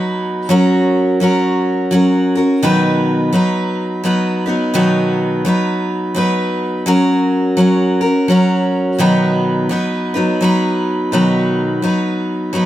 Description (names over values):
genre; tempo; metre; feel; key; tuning
country; 85 BPM; 3/4; swing 62% on 8ths; B major; A4 = 439 Hz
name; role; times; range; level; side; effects
picked steel-string acoustic guitar; solo; 0.0-12.7 s; B2 to B4; -13 LUFS; equal; none
room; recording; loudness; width
moderate studio reverb, RT60 0.9 s; none; -13 LUFS; side -13 dB against mid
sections
0.0-11.1 A section; 11.1-12.7 B section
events
none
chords
0.0 B; 0.5 F#; 2.6 B; 6.9 F#; 9.0 B